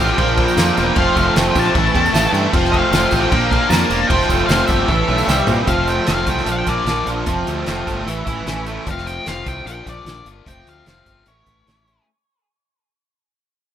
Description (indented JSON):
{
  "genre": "indie rock",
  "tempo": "152 BPM",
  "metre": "4/4",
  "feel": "straight",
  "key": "F major",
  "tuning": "A4 = 441 Hz",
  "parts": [
    { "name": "octave-fuzz lead guitar", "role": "melody", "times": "0.0-12.0 s", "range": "C#5 to A5", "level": "-22 LUFS", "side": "left 2 dB", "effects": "distortion, analog delay" },
    { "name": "combo organ", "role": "sustained chords", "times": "0.0-5.7 s", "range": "E4 to Bb5", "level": "-30 LUFS", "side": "right 1 dB", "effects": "none" },
    { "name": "fuzz guitar", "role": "riff", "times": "0.0-8.9 s", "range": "E3 to G4", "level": "-20 LUFS", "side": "right 7 dB", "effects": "distortion, ensemble chorus" },
    { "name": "raw garage guitar", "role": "riff", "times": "0.0-12.1 s", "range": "A2 to F4", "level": "-22 LUFS", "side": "left 7 dB", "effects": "overdrive" },
    { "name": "fingered electric bass", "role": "bass", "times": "0.0-12.0 s", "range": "E1 to Bb2", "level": "-23 LUFS", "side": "equal", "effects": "none" },
    { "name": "tambourine", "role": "percussion", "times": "0.1-5.6 s", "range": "none", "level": "-36 LUFS", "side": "right 4 dB", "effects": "none" },
    { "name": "loose indie drum kit", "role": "drums", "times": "0.2-12.0 s", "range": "crash cymbal, hi-hat, kick drum, snare drum, toms", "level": "-21 LUFS", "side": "equal", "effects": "none" },
    { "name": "shimmering bell with halo", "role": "second line", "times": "2.0-2.6, 5.1-5.6 s", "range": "C#5 to G5", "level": "-30 LUFS", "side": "right 3 dB", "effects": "none" }
  ],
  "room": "studio reverb",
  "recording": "rough home demo mix",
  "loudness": "-14 LUFS",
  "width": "side -10 dB against mid",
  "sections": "0.0-5.7 A section; 5.7-12.1 B section",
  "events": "drum fill 4.9-5.7; fade-out 5.7-12.1; lead electric guitar solo 5.7-12.1",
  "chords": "0.2 Bb; 1.0 Fadd9; 1.8 A; 2.5 Fadd9; 3.3 Bb; 4.1 Fadd9; 4.9 A; 5.3 C; 5.7 F; 6.5 Bb; 7.3 Fadd9; 8.1 A; 8.9 F; 9.7 Bb; 10.5 Fadd9; 11.3 A",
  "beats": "0.19 0.58 | 0.97 1.36 1.75 2.15 | 2.54 2.93 3.32 3.71 | 4.11 4.50 4.89 5.29 | 5.68 6.08 6.47 6.87 | 7.27 7.66 8.06 8.46 | 8.86 9.26 9.66 10.06 | 10.46 10.86 11.26 11.66"
}